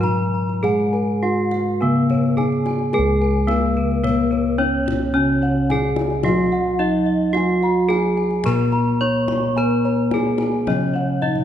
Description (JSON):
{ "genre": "Javanese gamelan", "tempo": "109 BPM", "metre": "4/4", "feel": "straight", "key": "C# slendro", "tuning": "A4 = 435 Hz", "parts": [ { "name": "gamelan-type bronze metallophone", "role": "melody", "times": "0.0-11.4 s", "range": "B3-40c to C#5", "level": "-21 LUFS", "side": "equal", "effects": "none" }, { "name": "gamelan-type bronze metallophone", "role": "accompaniment", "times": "0.0-11.4 s", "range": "C#3 to B3-40c", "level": "-23 LUFS", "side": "right 1 dB", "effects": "none" }, { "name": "gamelan-type bossed gongs", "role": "arpeggios", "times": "0.0-11.4 s", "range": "B4-40c to C#6", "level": "-28 LUFS", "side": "left 5 dB", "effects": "none" }, { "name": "gamelan-type bronze metallophone", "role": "arpeggios", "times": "0.0-11.4 s", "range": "B4-40c to C#6", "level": "-30 LUFS", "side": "right 2 dB", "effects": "none" }, { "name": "gamelan-type bossed gongs", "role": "bass", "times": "0.0-11.4 s", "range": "C#2 to B4-40c", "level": "-24 LUFS", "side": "equal", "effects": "none" }, { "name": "kendang", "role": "percussion", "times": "0.0-11.4 s", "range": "none", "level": "-30 LUFS", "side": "left 4 dB", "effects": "none" } ], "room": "moderate scoring stage reverb, RT60 1.9 s", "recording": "nothing above 10.7 kHz", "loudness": "-17 LUFS", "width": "side -10 dB against mid", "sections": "0.0-2.9 A section; 2.9-11.4 B section", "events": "drum fill 11.2", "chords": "none" }